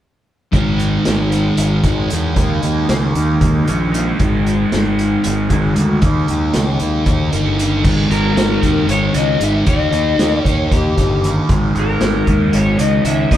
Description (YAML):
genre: psychedelic rock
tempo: 230 BPM (eighths)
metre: 7/8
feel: straight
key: unclear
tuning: A4 = 435 Hz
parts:
  - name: thick fuzz guitar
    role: riff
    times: 0.5-13.4 s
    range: G#2 to D#4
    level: -17 LUFS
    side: equal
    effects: distortion, phaser
  - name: fuzz picked electric bass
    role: bass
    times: 0.5-13.4 s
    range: G1 to E2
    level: -19 LUFS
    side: equal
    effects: overdrive
  - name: overtone-sweeping drone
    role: drone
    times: 1.5-7.9 s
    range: D#3 to G#3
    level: -28 LUFS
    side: right 2 dB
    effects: chorus, built-in reverb, phaser
  - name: vintage drum kit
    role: drums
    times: 0.5-13.4 s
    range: crash cymbal, hi-hat, kick drum, snare drum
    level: -19 LUFS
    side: equal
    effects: none
  - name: overdriven slide guitar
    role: melody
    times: 8.1-13.4 s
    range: G4 to E5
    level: -20 LUFS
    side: left 4 dB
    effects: none
room: moderate studio reverb, RT60 0.9 s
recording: band playing live in one room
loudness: -13 LUFS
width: side -12 dB against mid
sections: 0.5-7.9 A section; 7.9-13.4 B section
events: none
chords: 0.5 G#5; 2.4 D#5; 4.2 G#5; 6.0 D#; 7.9 G#sus2; 9.7 D#; 11.5 G#sus2